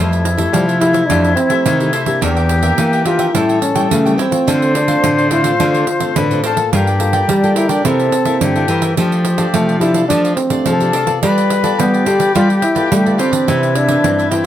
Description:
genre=samba and choro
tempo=107 BPM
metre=4/4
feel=straight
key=unclear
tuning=A4 = 440 Hz
part: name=bright wooden flute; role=second line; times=0.0-14.5 s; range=E4 to C5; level=-19 LUFS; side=left 4 dB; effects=none
part: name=cavaquinho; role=accompaniment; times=0.0-14.5 s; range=D4 to G5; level=-24 LUFS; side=right 2 dB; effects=none
part: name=nylon-string guitar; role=accompaniment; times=0.0-14.5 s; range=G2 to A4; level=-22 LUFS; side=left 2 dB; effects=none
part: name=nylon-string guitar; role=bass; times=0.0-14.5 s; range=E2 to C4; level=-17 LUFS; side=equal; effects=none
part: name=pandeiro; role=percussion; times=0.1-14.5 s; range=none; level=-21 LUFS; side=right 5 dB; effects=none
part: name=dark trombone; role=melody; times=0.5-14.5 s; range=G3 to G4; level=-16 LUFS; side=equal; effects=none
room=light reverb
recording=none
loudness=-12 LUFS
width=side -11 dB against mid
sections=0.0-14.5 A section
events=none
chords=0.0 Fmaj9; 2.2 Em7b5; 3.4 A7; 4.5 Dm7; 6.7 Gm9; 7.8 C13; 9.0 F69; 11.2 G9; 13.5 Cmaj9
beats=0.54 1.10 1.66 | 2.23 2.79 3.35 3.91 | 4.47 5.04 5.60 6.16 | 6.72 7.29 7.85 8.41 | 8.98 9.54 10.10 10.66 | 11.23 11.79 12.35 12.92 | 13.48 14.04

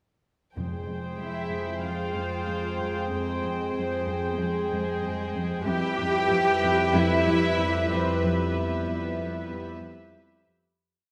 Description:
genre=cinematic, suspense film score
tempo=94 BPM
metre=4/4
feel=straight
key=F hungarian minor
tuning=A4 = 440 Hz
part: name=dark chamber violin section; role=melody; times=0.6-10.5 s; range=E5 to G5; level=-38 LUFS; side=equal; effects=none
part: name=rich studio viola section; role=accompaniment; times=0.6-10.6 s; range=G4 to C5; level=-35 LUFS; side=equal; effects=none
part: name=mellow French horn section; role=sustained chords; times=0.6-10.4 s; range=G3 to Ab4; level=-36 LUFS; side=equal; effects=none
part: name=warm studio cello section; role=riff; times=0.6-10.7 s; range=F2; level=-35 LUFS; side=equal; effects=none
part: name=rich studio double bass section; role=bass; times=0.6-10.5 s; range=F2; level=-35 LUFS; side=equal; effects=none
part: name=timpani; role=percussion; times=0.6-1.5 s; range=F2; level=-42 LUFS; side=equal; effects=none
part: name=warm studio violin section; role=second line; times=1.2-10.4 s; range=Ab4 to G5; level=-34 LUFS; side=equal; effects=none
part: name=warm studio cello section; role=bass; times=1.2-10.5 s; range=Ab3 to G4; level=-33 LUFS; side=equal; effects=none
room=wet scoring stage reverb, RT60 1.5 s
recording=none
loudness=-27 LUFS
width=mono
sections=0.6-10.8 A section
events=fade-out 8.2-10.8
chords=0.6 Fmadd9; 5.7 Em/F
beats=| 0.57 1.21 1.85 2.49 | 3.13 3.77 4.40 5.04 | 5.68 6.32 6.96 7.59 | 8.23 8.87 9.51 10.15

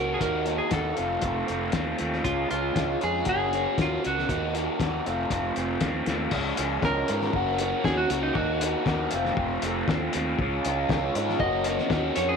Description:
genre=indie rock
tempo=118 BPM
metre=4/4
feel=straight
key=Db major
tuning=A4 = 440 Hz
part: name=clean electric guitar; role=melody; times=0.0-12.4 s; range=Eb4 to Eb5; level=-29 LUFS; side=equal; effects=wide subtle chorus, slapback echo
part: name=raw garage guitar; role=riff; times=0.0-12.4 s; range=Eb3 to Gb4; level=-26 LUFS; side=equal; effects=overdrive, phaser
part: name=fuzz fingered electric bass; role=bass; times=0.0-12.4 s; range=F1 to Ab2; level=-33 LUFS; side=right 1 dB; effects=overdrive
part: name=cloth-damped thuddy drum kit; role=drums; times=0.2-12.3 s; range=crash cymbal, hi-hat, kick drum, snare drum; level=-30 LUFS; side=left 4 dB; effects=none
room=light reverb, studio reverb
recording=1960s-style stereo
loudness=-24 LUFS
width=side -6 dB against mid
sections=0.0-6.3 A section; 6.3-12.4 B section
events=clean electric guitar solo 6.3-12.4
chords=0.2 Ebm; 1.0 F; 2.3 Db; 3.3 Gbadd9; 4.3 Ebm; 5.1 F; 6.3 Db; 7.3 Gb; 8.4 Ebm; 9.1 F; 10.4 Db; 11.4 Gb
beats=| 0.22 0.73 1.24 1.75 | 2.25 2.76 3.27 3.78 | 4.29 4.80 5.31 5.82 | 6.33 6.84 7.35 7.86 | 8.37 8.87 9.38 9.89 | 10.40 10.90 11.41 11.91

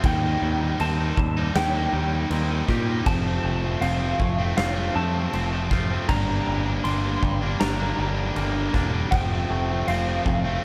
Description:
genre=post-rock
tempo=79 BPM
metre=4/4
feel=straight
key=unclear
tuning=A4 = 440 Hz
part: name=electric slide guitar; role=melody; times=0.0-10.6 s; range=F5 to C6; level=-32 LUFS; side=equal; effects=digital delay
part: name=twangy electric guitar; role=arpeggios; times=0.0-10.6 s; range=G2 to G4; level=-36 LUFS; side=equal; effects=digital delay
part: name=distorted electric guitar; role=riff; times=0.0-10.6 s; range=F2 to Eb4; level=-30 LUFS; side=equal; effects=overdrive, slapback echo
part: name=growling picked electric bass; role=bass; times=0.0-10.6 s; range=E1 to Bb2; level=-28 LUFS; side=equal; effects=overdrive
part: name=huge arena drum kit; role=drums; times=0.0-10.4 s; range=crash cymbal, kick drum, snare drum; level=-30 LUFS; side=equal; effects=none
room=light reverb, small room ambience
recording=none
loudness=-24 LUFS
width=mono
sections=0.0-10.6 A section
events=none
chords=0.0 Eb6; 3.1 F; 6.1 Gm; 9.1 F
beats=| 0.04 0.79 1.55 2.31 | 3.06 3.82 4.58 5.33 | 6.09 6.85 7.61 8.37 | 9.12 9.88 10.64

